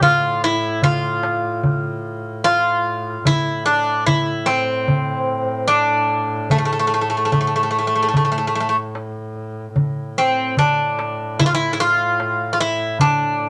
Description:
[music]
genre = Turkish makam ensemble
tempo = 74 BPM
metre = 4/4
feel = straight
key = A makam nihavent, A makam ussak from 9.7 s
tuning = A4 = 440 Hz
[part]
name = Greek bouzouki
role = melody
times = 0.0-13.5 s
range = A3 to F4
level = -20 LUFS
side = equal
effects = none
[part]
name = clear double bass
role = drone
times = 0.0-13.5 s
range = A2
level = -31 LUFS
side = equal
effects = none
[part]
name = darbuka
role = percussion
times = 0.0-13.2 s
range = none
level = -22 LUFS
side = equal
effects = none
[sound]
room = moderate studio reverb, RT60 0.6 s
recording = none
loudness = -19 LUFS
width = mono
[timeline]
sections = 0.0-9.7 A section; 9.7-13.5 B section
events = none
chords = none

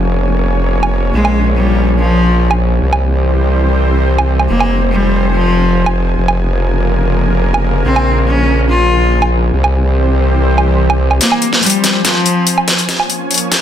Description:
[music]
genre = heavy wobble dubstep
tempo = 143 BPM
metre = 4/4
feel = half-time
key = F harmonic minor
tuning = A4 = 444 Hz
[part]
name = supersaw pad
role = sustained chords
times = 0.0-13.6 s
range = Db3 to Ab5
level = -18 LUFS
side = equal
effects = none
[part]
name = formant-sweep wobble bass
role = bass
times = 0.0-11.2 s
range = F1 to C2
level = -13 LUFS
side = equal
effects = chorus, overdrive
[part]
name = dubstep drum kit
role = drums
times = 0.8-13.6 s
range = hi-hat, snare drum, woodblock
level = -15 LUFS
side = right 2 dB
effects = overdrive, high-pass filter on hats, high-pass filter on perc, high-pass filter on snare, high-pass filter on cymbals
[part]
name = rich cello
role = melody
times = 1.1-12.6 s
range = F3 to F4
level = -15 LUFS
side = left 2 dB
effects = tape echo
[sound]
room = light reverb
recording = dense, heavily limited modern master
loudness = -10 LUFS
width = side -10 dB against mid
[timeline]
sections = 0.0-11.2 A section; 11.2-13.6 B section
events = build-up 11.2-13.6; drum fill 11.2-13.6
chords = 0.0 Db6/F; 1.1 Bbm7; 2.8 C; 4.5 Fm; 6.2 Db6/F; 7.9 Bbm7; 9.5 C; 11.2 Fm; 12.9 Db6/F

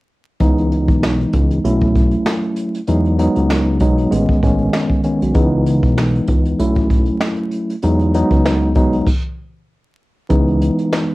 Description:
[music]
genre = hip hop, boom-bap hip-hop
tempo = 97 BPM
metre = 4/4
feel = swing 56% on 16ths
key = C# minor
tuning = A4 = 440 Hz
[part]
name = mellow tine electric piano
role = accompaniment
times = 0.4-11.1 s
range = D#3 to E4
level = -16 LUFS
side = equal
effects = medium stereo tremolo, cassette tape, high-pass filter, low-pass filter
[part]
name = fat analog bass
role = bass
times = 0.4-10.7 s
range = A1 to E2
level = -18 LUFS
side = equal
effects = none
[part]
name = jazz brush drum kit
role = drums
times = 0.4-11.1 s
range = crash cymbal, hi-hat, kick drum, snare drum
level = -18 LUFS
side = equal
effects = cassette tape
[sound]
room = light reverb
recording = home recording on cassette, vinyl crackle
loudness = -13 LUFS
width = side -20 dB against mid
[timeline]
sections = 0.4-10.3 A section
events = stop 9.1-10.3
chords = 0.4 C#m7; 1.6 B7sus4; 2.9 Emaj7; 4.1 Amaj9#11; 5.4 C#m7; 6.6 B7sus4; 7.8 Emaj7; 9.1 N.C.; 10.3 C#m7

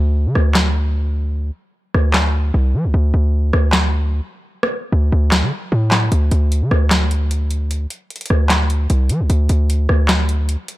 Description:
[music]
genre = hip hop, trap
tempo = 151 BPM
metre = 4/4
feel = half-time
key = D minor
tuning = A4 = 440 Hz
[part]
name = hard-hitting 808-style bass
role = bass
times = 0.0-10.6 s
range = C2 to F3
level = -15 LUFS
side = equal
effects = none
[part]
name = booming analog drum machine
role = drums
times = 0.4-10.8 s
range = handclaps, hi-hat, rim click, snare drum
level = -19 LUFS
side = equal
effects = none
[sound]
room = little or no reverb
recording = dark, warm production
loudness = -15 LUFS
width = side -17 dB against mid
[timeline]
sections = 0.0-10.8 A section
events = break 0.0-6.1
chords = none

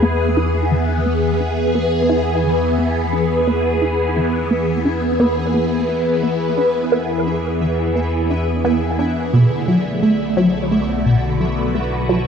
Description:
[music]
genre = ambient, sequencer-driven space music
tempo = 87 BPM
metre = 4/4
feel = straight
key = unclear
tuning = A4 = 439 Hz
[part]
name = phased string machine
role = sustained chords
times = 0.0-12.3 s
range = D3 to B4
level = -18 LUFS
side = equal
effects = ensemble chorus, phaser
[part]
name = resonant blip pluck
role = riff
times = 0.0-12.3 s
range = B2 to E4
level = -20 LUFS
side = equal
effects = phaser, analog delay
[part]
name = analog drone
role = bass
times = 0.0-12.3 s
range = B1 to E2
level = -24 LUFS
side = equal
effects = chorus
[part]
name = pulsing gated texture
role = texture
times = 0.0-12.3 s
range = E4 to E5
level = -35 LUFS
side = right 1 dB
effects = chorus, built-in reverb
[sound]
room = moderate plate reverb, RT60 2.4 s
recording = dreamy mix soaked in reverb, cassette tape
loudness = -15 LUFS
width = side -7 dB against mid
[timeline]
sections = 0.0-12.3 A section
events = fade-in on synth texture 0.0-12.3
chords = 0.0 E; 9.3 Bm7

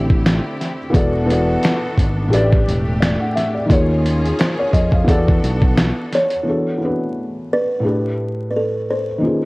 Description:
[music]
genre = lo-fi hip hop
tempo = 87 BPM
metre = 4/4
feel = swing 57% on 16ths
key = unclear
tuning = A4 = 440 Hz
[part]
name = felt-muted upright piano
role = accompaniment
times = 0.0-9.5 s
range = A2 to F#5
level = -20 LUFS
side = left 1 dB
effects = none
[part]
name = clear studio string section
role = sustained chords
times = 0.0-6.4 s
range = D3 to A4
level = -26 LUFS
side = equal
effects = none
[part]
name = fingered electric bass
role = bass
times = 0.0-5.9 s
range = E1 to E#2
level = -19 LUFS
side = equal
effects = none
[part]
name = dusty soul sampler-style drum kit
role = drums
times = 0.1-6.4 s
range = finger snaps, hi-hat, kick drum, snare drum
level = -17 LUFS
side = equal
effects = vintage 12-bit sampler grit
[part]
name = buzzing kalimba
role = melody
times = 6.2-9.5 s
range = A4 to C#5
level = -20 LUFS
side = equal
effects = none
[sound]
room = light reverb, small room ambience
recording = worn, warbling old tape, cassette tape, vinyl crackle, warbly pitch drift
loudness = -15 LUFS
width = side -24 dB against mid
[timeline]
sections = 0.0-6.5 A section; 6.5-9.5 B section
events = none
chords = 0.0 D9sus4; 0.9 E9sus4; 2.3 A9sus4; 3.7 D#9sus4; 5.1 E9sus4; 7.8 A9sus4

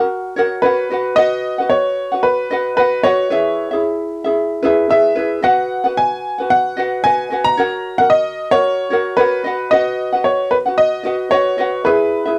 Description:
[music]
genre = pop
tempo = 112 BPM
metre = 4/4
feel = swing 55% on 16ths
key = B major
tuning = A4 = 442 Hz
[part]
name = ukulele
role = accompaniment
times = 0.0-12.4 s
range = E4 to F#5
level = -20 LUFS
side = equal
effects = none
[part]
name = bright upright piano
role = melody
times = 0.6-12.4 s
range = B4 to A#5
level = -18 LUFS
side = equal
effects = none
[sound]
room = light reverb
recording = dry, close 1970s-style studio recording, faint mains hum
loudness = -16 LUFS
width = mono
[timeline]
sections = 0.0-12.4 A section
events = none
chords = 0.0 F#; 0.9 B; 3.3 E; 5.4 B; 7.6 F#; 9.4 B; 11.8 E

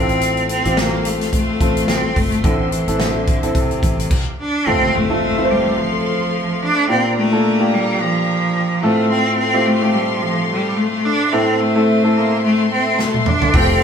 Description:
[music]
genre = piano-driven pop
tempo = 108 BPM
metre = 4/4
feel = swing 56% on 16ths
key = F major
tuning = A4 = 439 Hz
[part]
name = bright cello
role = melody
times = 0.0-13.8 s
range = C3 to D4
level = -18 LUFS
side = equal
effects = none
[part]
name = clear concert grand piano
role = accompaniment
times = 0.0-13.8 s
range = A2 to C5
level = -19 LUFS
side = equal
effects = none
[part]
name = warm studio string section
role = sustained chords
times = 0.0-13.8 s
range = G4 to C6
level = -25 LUFS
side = left 5 dB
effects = none
[part]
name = fingered electric bass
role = bass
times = 0.0-4.1, 13.5-13.8 s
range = F1 to A1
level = -23 LUFS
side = equal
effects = none
[part]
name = natural country drum kit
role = drums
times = 0.1-4.3, 13.0-13.8 s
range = crash cymbal, hi-hat, kick drum, snare drum, toms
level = -19 LUFS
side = equal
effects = none
[part]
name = impact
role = sound effects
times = 4.7-6.9 s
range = none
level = -27 LUFS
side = equal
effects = none
[part]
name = warm symphonic violin section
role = second line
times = 13.5-13.8 s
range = G4 to G5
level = -20 LUFS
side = equal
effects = none
[sound]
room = wet stone room reverb, RT60 1.3 s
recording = band playing live in one room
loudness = -14 LUFS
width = side -7 dB against mid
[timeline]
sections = 0.0-4.7 A section; 4.7-13.8 B section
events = impact 4.7-6.9; drum fill 13.0-13.5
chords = 0.0 F/A; 2.4 Am; 4.7 F; 6.9 Bb6; 8.8 F/A; 11.3 Am

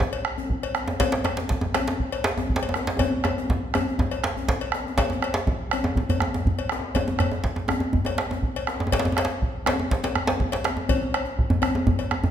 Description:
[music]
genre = west african traditional, West African drum ensemble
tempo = 121 BPM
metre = 4/4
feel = straight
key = none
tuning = none
[part]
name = bombo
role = percussion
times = 0.0-12.3 s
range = none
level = -27 LUFS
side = right 2 dB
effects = none
[part]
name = djembe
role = percussion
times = 0.0-12.3 s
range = none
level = -26 LUFS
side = right 1 dB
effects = none
[part]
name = cowbell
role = percussion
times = 0.1-12.1 s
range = none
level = -31 LUFS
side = left 6 dB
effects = none
[part]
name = djembe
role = percussion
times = 0.3-12.3 s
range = none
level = -31 LUFS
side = left 4 dB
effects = none
[sound]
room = wet recital hall reverb, RT60 1.5 s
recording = minimal, uncompressed stereo recording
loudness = -22 LUFS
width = side -10 dB against mid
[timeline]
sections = 0.0-5.0 A section; 5.0-12.3 A section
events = drum fill 3.0-5.0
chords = none

